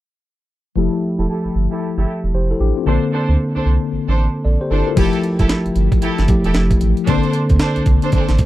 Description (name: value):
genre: R&B, new jack swing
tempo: 114 BPM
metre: 4/4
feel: swing 61% on 16ths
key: F major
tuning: A4 = 440 Hz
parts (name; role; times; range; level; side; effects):
- tine electric piano; accompaniment; 0.8-8.5 s; D3 to D5; -19 LUFS; moving between left 7 dB and equal; auto-pan, low-pass filter
- rich studio string section; stabs; 0.8-8.3 s; D4 to C5; -24 LUFS; right 4 dB; low-pass filter
- round analog bass; bass; 0.8-8.5 s; E1 to D2; -17 LUFS; right 1 dB; none
- breakbeat sampler-style drum kit; drums; 5.0-8.5 s; crash cymbal, hi-hat, kick drum, snare drum; -17 LUFS; right 1 dB; none
room: little or no reverb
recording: dry, close 1970s-style studio recording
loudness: -15 LUFS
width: side -15 dB against mid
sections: 0.8-5.0 A section; 5.0-8.5 B section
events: filter sweep 0.8-5.0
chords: 0.8 Fmaj9; 2.9 Bbmaj9; 5.0 Fmaj9; 7.1 Bbmaj9